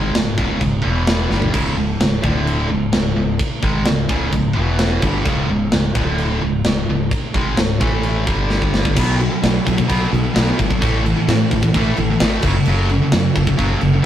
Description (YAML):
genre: heavy metal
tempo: 129 BPM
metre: 4/4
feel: straight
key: C# minor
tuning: A4 = 439 Hz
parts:
  - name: high-gain distorted guitar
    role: riff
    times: 0.0-14.1 s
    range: C#2 to B3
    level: -19 LUFS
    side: equal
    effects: distortion
  - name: modern bright fingered electric bass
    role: bass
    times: 0.0-14.0 s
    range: C#1 to A2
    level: -20 LUFS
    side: equal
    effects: none
  - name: tight metal drum kit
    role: drums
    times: 0.1-13.9 s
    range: china cymbal, crash cymbal, kick drum, snare drum, toms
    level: -20 LUFS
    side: equal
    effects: none
room: light reverb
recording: rough rehearsal-room recording, tube saturation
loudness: -15 LUFS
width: side -11 dB against mid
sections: 0.0-9.0 A section; 9.0-14.1 B section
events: drum fill 1.3, 8.5-9.0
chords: 0.0 C#5; 0.8 E5; 1.3 C#5; 2.2 D5; 2.7 C#5; 4.6 E5; 5.0 C#5; 6.0 D5; 6.4 C#5; 7.8 A5; 8.3 G5; 9.0 B5; 10.8 A5; 12.4 F#5